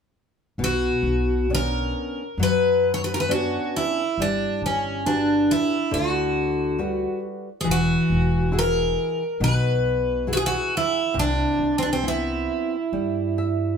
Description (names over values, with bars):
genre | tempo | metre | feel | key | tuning
fado-style ballad | 68 BPM | 4/4 | rubato | B harmonic minor | A4 = 441 Hz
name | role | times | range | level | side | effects
picked twelve-string acoustic guitar | melody | 0.6-13.8 s | C4 to C#5 | -22 LUFS | equal | none
nylon-string guitar | accompaniment | 0.6-13.8 s | B2 to E5 | -27 LUFS | left 1 dB | none
upright bass | bass | 0.6-13.8 s | E1 to G2 | -28 LUFS | equal | none
room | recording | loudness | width
light reverb | band playing live in one room | -20 LUFS | side -6 dB against mid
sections
0.6-13.8 A section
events
nylon-string guitar fill 12.9-13.8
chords
0.6 Bmadd9; 4.2 Gmaj7; 7.7 Eadd9; 11.1 Cmaj7